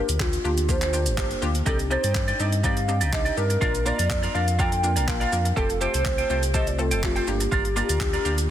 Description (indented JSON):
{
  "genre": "dance-pop",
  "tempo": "123 BPM",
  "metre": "4/4",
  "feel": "straight",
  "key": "C dorian",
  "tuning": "A4 = 445 Hz",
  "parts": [
    { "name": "hollow clarinet-like synth lead", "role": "melody", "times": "0.0-8.5 s", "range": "F4 to G5", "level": "-27 LUFS", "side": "right 1 dB", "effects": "chorus, tape echo" },
    { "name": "analog pluck", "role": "accompaniment", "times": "0.0-8.5 s", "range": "A3 to Bb4", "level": "-30 LUFS", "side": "left 3 dB", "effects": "chorus, sidechain pumping" },
    { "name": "sub bass with octave", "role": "bass", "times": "0.0-8.5 s", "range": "F1 to G2", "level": "-26 LUFS", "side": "equal", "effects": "sidechain pumping" },
    { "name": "deep house drum kit", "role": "drums", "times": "0.1-8.5 s", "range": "handclaps, hi-hat, kick drum, shaker", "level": "-27 LUFS", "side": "equal", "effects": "overdrive" },
    { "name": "twelve-string electric guitar", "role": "riff", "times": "1.7-8.4 s", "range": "Eb4 to G5", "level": "-29 LUFS", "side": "right 3 dB", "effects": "lush chorus" }
  ],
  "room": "light reverb",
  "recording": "dense, heavily limited modern master",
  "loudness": "-21 LUFS",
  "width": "side -11 dB against mid",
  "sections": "0.0-8.5 A section",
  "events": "none",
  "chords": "0.0 Gm7; 1.7 Cmadd9; 3.6 Bb; 5.6 Fadd9; 7.3 Gm7"
}